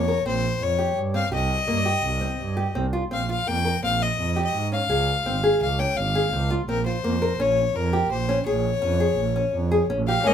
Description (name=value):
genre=contemporary instrumental, chamber music in an uneven meter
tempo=168 BPM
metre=5/4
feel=straight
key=Bb dorian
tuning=A4 = 438 Hz
part: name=clear violin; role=melody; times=0.0-10.3 s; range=Bb4 to G5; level=-25 LUFS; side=left 6 dB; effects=none
part: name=clear double bass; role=bass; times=0.0-10.3 s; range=Ab1 to Ab2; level=-25 LUFS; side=right 3 dB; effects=none
part: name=nylon-string guitar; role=arpeggios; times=0.1-10.3 s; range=Bb3 to Bb4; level=-26 LUFS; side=equal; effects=none
part: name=rich studio string section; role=sustained chords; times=10.3 s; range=Ab3 to Db4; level=-18 LUFS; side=left 1 dB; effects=none
room=light reverb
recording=none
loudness=-21 LUFS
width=side -8 dB against mid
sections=0.0-10.3 A section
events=none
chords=0.0 Bbm69; 1.3 Cm; 3.1 Bbsus2; 4.9 Db; 6.7 Bbmadd9; 8.5 Bbm7